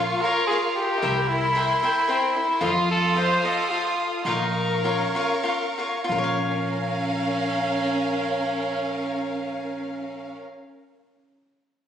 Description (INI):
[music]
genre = mexican folk, mariachi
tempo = 90-114 BPM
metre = 3/4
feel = straight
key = Bb minor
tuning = A4 = 440 Hz
[part]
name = breathy trumpet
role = melody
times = 0.0-5.4 s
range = C4 to C5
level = -25 LUFS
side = left 3 dB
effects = none
[part]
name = warm violin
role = second line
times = 0.0-10.3 s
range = Db4 to F4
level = -27 LUFS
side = right 3 dB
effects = none
[part]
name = cavaquinho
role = accompaniment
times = 0.0-10.5 s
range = F4 to G5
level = -28 LUFS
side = left 2 dB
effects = none
[part]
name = rich symphonic violin section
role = sustained chords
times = 0.0-10.4 s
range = Db4 to Eb6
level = -28 LUFS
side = equal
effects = none
[part]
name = upright bass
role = bass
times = 0.0-10.3 s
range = Bb1 to F2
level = -31 LUFS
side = equal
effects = none
[sound]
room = wet scoring stage reverb, RT60 1.6 s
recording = recorded on a phone in the room, studio reverb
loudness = -21 LUFS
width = side -9 dB against mid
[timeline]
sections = 0.0-6.1 A section; 6.1-10.1 B section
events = slowing down 2.6-6.1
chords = 0.0 Bbm; 1.0 C7; 2.6 F7; 4.3 Bbm